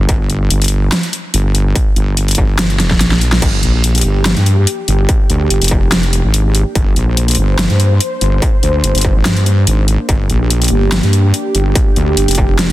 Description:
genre	heavy wobble dubstep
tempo	144 BPM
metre	4/4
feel	swing 53% on 16ths, half-time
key	G phrygian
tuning	A4 = 440 Hz
part	wobble bass	bass	0.0-12.7 s	F1 to G2	-12 LUFS	equal	chorus, overdrive
part	dubstep drum kit	drums	0.1-12.7 s	crash cymbal, hi-hat, snare drum	-16 LUFS	equal	none
part	electronic kick drum	drums	0.1-12.5 s	none	-14 LUFS	equal	distortion
part	lush unison pad	sustained chords	3.4-12.7 s	Bb3 to C5	-20 LUFS	right 1 dB	chorus, sidechain pumping
room	little or no reverb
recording	dense, heavily limited modern master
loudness	-10 LUFS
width	side -16 dB against mid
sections	0.0-3.4 A section; 3.4-12.7 A section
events	drop 0.0-3.4, 3.4-12.7; drum fill 2.8-3.4; band accent 3.3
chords	0.0 N.C.; 3.4 Gm

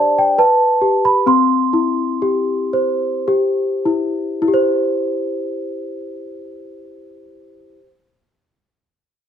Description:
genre	children's music, lullaby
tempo	47-72 BPM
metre	3/4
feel	rubato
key	C major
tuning	A4 = 440 Hz
part	celesta	solo	0.0-7.9 s	C4 to C6	-15 LUFS	equal	none
room	moderate recital hall reverb, RT60 1.2 s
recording	close, detailed microphones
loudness	-14 LUFS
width	side -8 dB against mid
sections	0.0-4.5 A section; 4.5-8.3 B section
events	slowing down 0.0-4.5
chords	0.4 G; 1.3 C

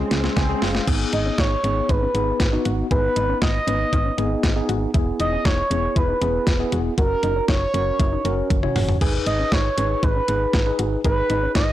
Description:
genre	synth-pop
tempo	118 BPM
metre	4/4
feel	straight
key	unclear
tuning	A4 = 440 Hz
part	mellow tine electric piano	accompaniment	0.0-11.7 s	G#3 to G#5	-26 LUFS	left 1 dB	medium stereo tremolo
part	solid FM bass	bass	0.0-11.7 s	E1 to C#2	-25 LUFS	equal	none
part	swell	sound effects	0.0-0.9 s	none	-29 LUFS	right 1 dB	none
part	clean 12-bit digital drum machine	drums	0.1-11.7 s	crash cymbal, hi-hat, kick drum, snare drum, toms	-22 LUFS	equal	overdrive
part	soft round pluck	arpeggios	0.9-11.7 s	B3 to G#4	-32 LUFS	left 4 dB	chorus, slapback echo
part	expressive synth lead	melody	1.1-11.7 s	A#4 to D#5	-23 LUFS	right 1 dB	chorus, slapback echo
room	light reverb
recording	blown-out, overdriven recording, overdrive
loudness	-18 LUFS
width	side -13 dB against mid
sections	0.9-11.7 A section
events	drum fill 0.0-0.9, 8.5-9.0; swell 0.0-0.9; tine electric piano fill 0.1-0.9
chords	0.0 C#; 0.9 G#m; 4.9 E; 7.0 F#; 9.0 G#m

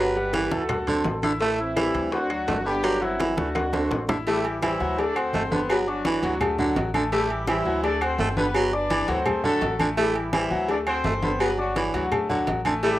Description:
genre	latin, salsa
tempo	168 BPM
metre	4/4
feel	straight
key	G major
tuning	A4 = 442 Hz
part	mellow horn section	melody	0.0-4.1 s	C4 to B4	-27 LUFS	equal	cassette tape
part	raspy baritone saxophone	second line	0.0-13.0 s	D3 to A3	-26 LUFS	right 2 dB	cassette tape
part	bright concert grand piano	accompaniment	0.0-13.0 s	E3 to F#6	-29 LUFS	left 2 dB	cassette tape
part	upright bass	bass	0.0-13.0 s	G1 to D2	-33 LUFS	equal	none
part	bongos and cowbell	percussion	0.2-13.0 s	none	-31 LUFS	left 4 dB	none
part	congas	percussion	0.2-13.0 s	none	-31 LUFS	left 1 dB	none
part	timbales and agogo bells	percussion	0.3-13.0 s	none	-32 LUFS	right 4 dB	none
part	claves	percussion	0.7-12.8 s	none	-36 LUFS	left 4 dB	none
part	dark horn section	melody	4.3-13.0 s	F#3 to E5	-28 LUFS	left 1 dB	cassette tape
room	moderate studio reverb, RT60 0.5 s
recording	home recording on cassette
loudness	-22 LUFS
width	side -15 dB against mid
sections	0.0-4.3 A section; 4.3-13.0 B section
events	drum fill 3.4-4.3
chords	0.0 Gmaj7; 0.7 D7; 1.4 Am7; 2.1 Gmaj7; 3.6 D7; 4.3 Am7; 5.0 D7; 5.7 Gmaj7; 6.4 D; 7.1 Am7; 7.8 Gmaj7; 9.3 D; 10.0 Am7; 10.7 D7; 11.4 Gmaj7; 12.1 D

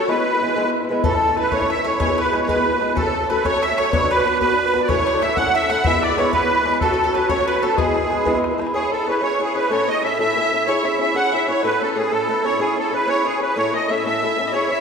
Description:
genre	celtic folk, Celtic jig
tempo	125 BPM (dotted quarters)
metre	6/8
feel	straight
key	E mixolydian, C# minor from 8.7 s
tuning	A4 = 440 Hz
part	musette accordion	melody	0.0-14.8 s	G#4 to F#5	-20 LUFS	right 2 dB	none
part	clear erhu	second line	0.0-14.8 s	G#4 to F#5	-26 LUFS	left 5 dB	none
part	fingerpicked swing-style acoustic guitar	accompaniment	0.0-14.8 s	A2 to C#5	-21 LUFS	equal	none
part	mandolin	second line	1.0-8.4 s	G#4 to F#5	-26 LUFS	equal	none
part	bodhran	percussion	1.0-8.7 s	none	-27 LUFS	left 3 dB	none
room	wet concert hall reverb, RT60 2.0 s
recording	recorded in a church or concert hall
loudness	-17 LUFS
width	side -6 dB against mid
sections	0.0-1.0 A section; 1.0-8.7 A section; 8.7-14.8 B section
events	none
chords	0.1 E; 1.0 A; 2.0 E/G#; 3.0 F#m; 3.9 Bm; 4.9 A; 5.8 E/G#; 6.8 F#m; 7.8 E; 8.7 C#m; 9.7 A; 10.7 C#m; 11.6 A; 12.6 C#m; 13.6 A

